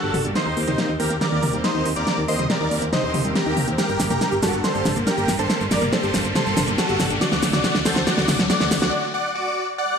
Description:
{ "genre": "uplifting trance", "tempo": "140 BPM", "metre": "4/4", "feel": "straight", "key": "G harmonic minor", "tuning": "A4 = 441 Hz", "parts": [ { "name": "big supersaw lead", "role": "melody", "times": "0.0-10.0 s", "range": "Eb4 to F#5", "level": "-23 LUFS", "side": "equal", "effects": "phaser, digital delay" }, { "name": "bright symphonic string section", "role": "sustained chords", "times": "0.0-8.9 s", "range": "D3 to G4", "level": "-28 LUFS", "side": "right 1 dB", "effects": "none" }, { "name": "wide unison pluck", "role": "arpeggios", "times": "0.0-8.8 s", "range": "D3 to G4", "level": "-29 LUFS", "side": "left 2 dB", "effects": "digital delay" }, { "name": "solid FM bass", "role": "bass", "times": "0.0-8.9 s", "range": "G1 to Eb2", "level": "-28 LUFS", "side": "equal", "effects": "none" }, { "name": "riser and swell", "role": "sound effects", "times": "0.3-10.0 s", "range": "none", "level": "-31 LUFS", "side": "left 2 dB", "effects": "none" }, { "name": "big-room dance drum kit", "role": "drums", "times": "0.1-8.9 s", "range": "hi-hat, shaker, snare drum, toms", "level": "-23 LUFS", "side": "equal", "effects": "none" } ], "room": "moderate digital room reverb, RT60 1.3 s, digital ambience", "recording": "dark, warm production", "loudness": "-18 LUFS", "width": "side -6 dB against mid", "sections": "0.0-10.0 A section", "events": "build-up 0.0-10.0; drum fill 0.0-8.9; riser 0.3-8.9; break 8.9-10.0; swell 9.8", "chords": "0.4 Eb6; 3.8 Gm; 7.2 D" }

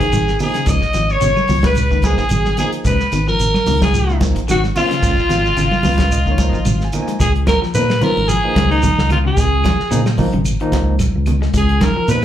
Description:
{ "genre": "afrobeat", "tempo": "110 BPM", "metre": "4/4", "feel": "swing 55% on 16ths", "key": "Db mixolydian", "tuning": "A4 = 438 Hz", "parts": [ { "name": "raspy alto saxophone", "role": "melody", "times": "0.0-12.2 s", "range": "Eb4 to Eb5", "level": "-20 LUFS", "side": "left 1 dB", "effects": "plate reverb, slapback echo" }, { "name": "clear trumpet", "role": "second line", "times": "0.0-12.2 s", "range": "Eb4 to Eb5", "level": "-23 LUFS", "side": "right 2 dB", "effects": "plate reverb, slapback echo" }, { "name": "barky tine electric piano", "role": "accompaniment", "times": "0.0-12.2 s", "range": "F3 to Ab5", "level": "-25 LUFS", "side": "right 3 dB", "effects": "overdrive, medium tremolo, plate reverb, slapback echo" }, { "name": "electric guitar at the edge of break-up", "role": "arpeggios", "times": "0.0-12.2 s", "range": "Db3 to Ab3", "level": "-24 LUFS", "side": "left 8 dB", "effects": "vibrato effect, plate reverb, slapback echo" }, { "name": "warm soul drum kit", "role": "drums", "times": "0.0-12.2 s", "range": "hi-hat, kick drum, snare drum", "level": "-21 LUFS", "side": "equal", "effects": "none" }, { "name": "shekere", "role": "percussion", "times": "0.0-12.2 s", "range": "none", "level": "-26 LUFS", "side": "right 3 dB", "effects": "none" }, { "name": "fingered electric bass", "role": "bass", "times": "0.1-12.2 s", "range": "Ab1 to Bb2", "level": "-17 LUFS", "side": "equal", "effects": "none" }, { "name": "claves", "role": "percussion", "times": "0.1-12.2 s", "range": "none", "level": "-36 LUFS", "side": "right 1 dB", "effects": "none" }, { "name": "congas", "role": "percussion", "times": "0.1-12.2 s", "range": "none", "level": "-22 LUFS", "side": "right 2 dB", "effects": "slapback echo" } ], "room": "light reverb", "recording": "live gig heard through the venue's PA, club reverb", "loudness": "-13 LUFS", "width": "side -11 dB against mid", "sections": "0.0-7.2 A section; 7.2-12.2 B section", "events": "tine electric piano fill 5.6-7.2", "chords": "0.0 Db7; 7.2 Db" }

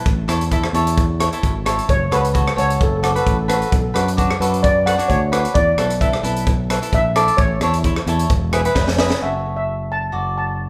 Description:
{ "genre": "calypso", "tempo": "131 BPM", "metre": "4/4", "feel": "straight", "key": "A major", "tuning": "A4 = 440 Hz", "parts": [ { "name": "steel pan", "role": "melody", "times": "0.0-10.7 s", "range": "A4 to A5", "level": "-23 LUFS", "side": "equal", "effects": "none" }, { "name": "cavaquinho", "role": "accompaniment", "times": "0.0-10.7 s", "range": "D4 to E5", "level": "-24 LUFS", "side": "equal", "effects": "none" }, { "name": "overdriven fingered electric bass", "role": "bass", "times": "0.1-10.7 s", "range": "E1 to F#2", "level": "-24 LUFS", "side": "equal", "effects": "none" }, { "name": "crisp fusion drum kit", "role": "drums", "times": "0.1-9.2 s", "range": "hi-hat, kick drum, rim click, snare drum", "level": "-23 LUFS", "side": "equal", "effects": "none" } ], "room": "moderate large studio reverb, RT60 1.2 s", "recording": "band playing live in one room", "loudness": "-18 LUFS", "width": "mono", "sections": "0.0-9.2 A section; 9.2-10.7 B section", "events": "steel pan solo 0.0-9.2; drum fill 8.8-9.2", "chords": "0.1 A; 1.9 F#m; 2.8 D/F# (rootless); 3.7 Bm7; 5.6 Esus4; 7.4 A; 8.3 E; 9.2 F#m; 10.1 D/F#" }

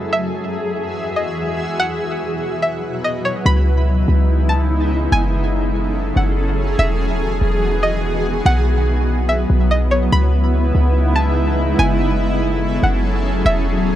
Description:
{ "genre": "hip hop, atmospheric cloud-rap", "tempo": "144 BPM", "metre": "4/4", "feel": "half-time", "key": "C# minor", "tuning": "A4 = 440 Hz", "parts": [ { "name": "granular cloud pad", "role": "sustained chords", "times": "0.0-14.0 s", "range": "E2 to F#5", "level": "-20 LUFS", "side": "equal", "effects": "built-in reverb, low-pass filter" }, { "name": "string-like resonator pluck", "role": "melody", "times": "0.1-14.0 s", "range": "C#5 to B5", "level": "-21 LUFS", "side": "equal", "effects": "chorus, low-pass filter, tape echo" }, { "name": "clean 808-style bass", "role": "bass", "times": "3.5-14.0 s", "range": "D#1 to C#2", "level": "-17 LUFS", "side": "equal", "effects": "transformer saturation" } ], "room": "little or no reverb", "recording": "dry, gritty hardware recording", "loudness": "-15 LUFS", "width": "side -12 dB against mid", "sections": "0.0-3.5 A section; 3.5-14.0 B section", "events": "none", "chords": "0.1 E; 1.8 Bsus4; 3.5 C#m7; 5.1 F#m7; 6.8 Emaj7; 8.5 Bsus4; 10.1 C#m7; 11.8 F#m7" }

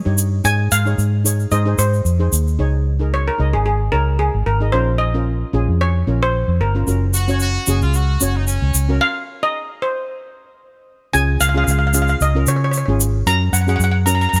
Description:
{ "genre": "calypso", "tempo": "112 BPM", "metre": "4/4", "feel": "swing 54% on 16ths", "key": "Db major", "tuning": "A4 = 437 Hz", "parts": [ { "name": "steel pan", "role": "melody", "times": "0.0-14.4 s", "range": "Ab4 to Bb5", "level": "-23 LUFS", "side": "equal", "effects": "none" }, { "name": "steel pan", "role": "accompaniment", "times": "0.1-14.3 s", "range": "Db4 to Eb5", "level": "-28 LUFS", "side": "equal", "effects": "none" }, { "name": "vintage muted fingered electric bass", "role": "bass", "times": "0.1-14.4 s", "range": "Gb1 to Db3", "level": "-19 LUFS", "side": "equal", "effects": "none" }, { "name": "egg shaker", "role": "percussion", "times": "0.2-2.5, 6.9-14.4 s", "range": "none", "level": "-24 LUFS", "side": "equal", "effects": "none" }, { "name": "brilliant horn section", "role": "second line", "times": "7.1-9.0 s", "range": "Db4 to Gb4", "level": "-28 LUFS", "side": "equal", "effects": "none" } ], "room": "light reverb", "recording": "none", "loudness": "-18 LUFS", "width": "mono", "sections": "0.0-2.6 A section; 2.6-11.1 B section; 11.1-14.4 A section", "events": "steel pan solo 2.6-11.1; stop 9.0-11.1", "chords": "0.5 Absus4; 1.5 Ab; 2.6 Dbsus2; 4.7 Bbm; 6.9 Gb; 9.0 N.C.; 11.1 Db; 13.3 Gb" }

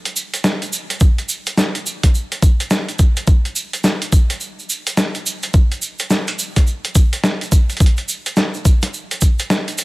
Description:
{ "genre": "glitch hop", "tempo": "106 BPM", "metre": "4/4", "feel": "swing 62% on 16ths", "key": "none", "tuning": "none", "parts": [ { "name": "boom bap sampler-style drum kit", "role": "drums", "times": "0.1-9.8 s", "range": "hi-hat, snare drum", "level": "-19 LUFS", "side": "equal", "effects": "studio reverb" }, { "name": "tube shaker", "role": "percussion", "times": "0.1-9.8 s", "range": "none", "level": "-25 LUFS", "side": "right 3 dB", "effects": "none" }, { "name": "electronic kick drum", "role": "drums", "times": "1.0-9.4 s", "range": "none", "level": "-12 LUFS", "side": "equal", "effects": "overdrive, studio reverb" } ], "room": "little or no reverb", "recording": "none", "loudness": "-15 LUFS", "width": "side -22 dB against mid", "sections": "0.0-9.8 A section", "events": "break 9.5-9.8", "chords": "none" }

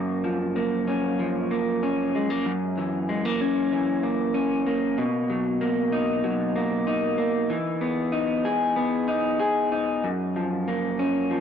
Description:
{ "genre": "indie pop", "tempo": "95 BPM", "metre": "4/4", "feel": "straight", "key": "F# major", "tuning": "A4 = 440 Hz", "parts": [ { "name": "electric guitar through a small old amp", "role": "solo", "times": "0.0-11.4 s", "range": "F#2 to G#4", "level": "-22 LUFS", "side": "equal", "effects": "wide subtle chorus, warbly pitch drift, analog delay" } ], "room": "moderate small room reverb, RT60 0.5 s", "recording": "dry, gritty hardware recording, transformer saturation", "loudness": "-22 LUFS", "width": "side -8 dB against mid", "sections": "0.0-11.4 A section", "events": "none", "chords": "0.0 F#maj7; 2.4 F#7; 5.0 Bmaj7; 7.5 Emaj7; 10.0 F#maj7" }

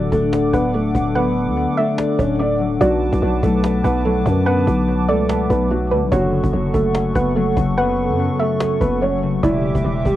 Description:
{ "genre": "hip hop, trap", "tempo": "145 BPM", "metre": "4/4", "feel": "half-time", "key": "unclear", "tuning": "A4 = 440 Hz", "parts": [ { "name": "felt-muted upright piano", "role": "melody", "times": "0.0-10.2 s", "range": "E3 to D5", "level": "-21 LUFS", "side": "right 1 dB", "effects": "low-pass filter, cassette tape, tape echo" }, { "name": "concert harp", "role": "accompaniment", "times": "0.0-10.2 s", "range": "E2 to D5", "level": "-22 LUFS", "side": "left 6 dB", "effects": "low-pass filter" }, { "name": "hollow soft pad", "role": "sustained chords", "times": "0.0-10.2 s", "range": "G4 to D6", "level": "-26 LUFS", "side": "right 2 dB", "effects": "chorus" }, { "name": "growling 808-style bass", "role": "bass", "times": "0.0-10.2 s", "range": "D1 to F#2", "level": "-21 LUFS", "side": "right 1 dB", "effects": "none" }, { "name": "cajon", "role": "drums", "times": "0.1-10.2 s", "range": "none", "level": "-26 LUFS", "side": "right 1 dB", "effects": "cassette tape" }, { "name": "soft round pluck", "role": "second line", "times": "0.5-9.8 s", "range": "B4 to F#5", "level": "-25 LUFS", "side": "right 2 dB", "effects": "chorus, phaser, tape echo" } ], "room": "light reverb", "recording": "home recording on cassette", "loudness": "-16 LUFS", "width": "side -13 dB against mid", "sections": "0.0-10.2 A section", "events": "none", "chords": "0.0 D; 2.8 Bm7; 6.1 F#m; 9.4 Em7" }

